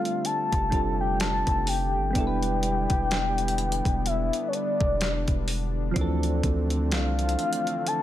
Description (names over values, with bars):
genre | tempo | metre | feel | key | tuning
contemporary R&B | 63 BPM | 4/4 | swing 58% on 16ths | unclear | A4 = 440 Hz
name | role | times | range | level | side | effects
soft octave-layered synth lead | melody | 0.0-8.0 s | C#5 to A5 | -28 LUFS | left 2 dB | chorus, tremolo, ping-pong delay
soft electric-piano-like synth keys | accompaniment | 0.0-8.0 s | E3 to B4 | -31 LUFS | right 2 dB | chorus
warm analog pad | sustained chords | 0.0-8.0 s | D3 to G4 | -34 LUFS | left 2 dB | chorus
clean 12-bit digital drum machine | drums | 0.1-8.0 s | hi-hat, kick drum, snare drum | -29 LUFS | equal | none
long sustained 808-style bass | bass | 0.5-7.4 s | E1 to D2 | -28 LUFS | equal | none
room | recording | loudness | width
little or no reverb | none | -23 LUFS | side -12 dB against mid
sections
0.0-8.0 A section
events
none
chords
0.0 F69; 2.1 Em7; 6.0 Dm9